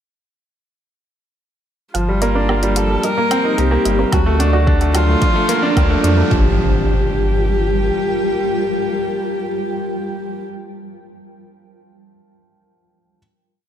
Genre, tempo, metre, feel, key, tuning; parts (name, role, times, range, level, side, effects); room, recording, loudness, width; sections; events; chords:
piano and strings electronica; 110 BPM; 4/4; straight; G minor; A4 = 440 Hz
warm viola; melody; 1.9-10.4 s; F4 to Bb4; -22 LUFS; left 2 dB; tape echo
granular cloud pad; sustained chords; 2.9-10.7 s; G3 to A5; -24 LUFS; right 1 dB; built-in reverb, sidechain pumping
soft round pluck; arpeggios; 1.9-6.6 s; F4 to A5; -29 LUFS; right 4 dB
warm grand piano; riff; 1.9-13.2 s; F3 to F#4; -19 LUFS; right 1 dB; tape echo
warm sub bass; bass; 1.9-7.9 s; G1 to F2; -18 LUFS; equal; sidechain pumping
electronic hi-hat and woodblock; drums; 1.9-6.1 s; -25 LUFS; equal
riser and impact; sound effects; 4.7-10.5 s; -24 LUFS; equal
electronic kick drum; drums; 4.1-6.4 s; -17 LUFS; equal
moderate echo chamber reverb, RT60 1.3 s; -14 LUFS; side -10 dB against mid
1.9-6.3 build; 6.3-10.7 final chord
build-up 1.9-6.3; filter sweep on ambient pad 1.9-6.3; filter sweep on synth arpeggio sound 1.9-6.3
1.9 Gm7; 3.0 Cm7; 4.1 D; 5.2 Bbmaj7; 6.3 Gm7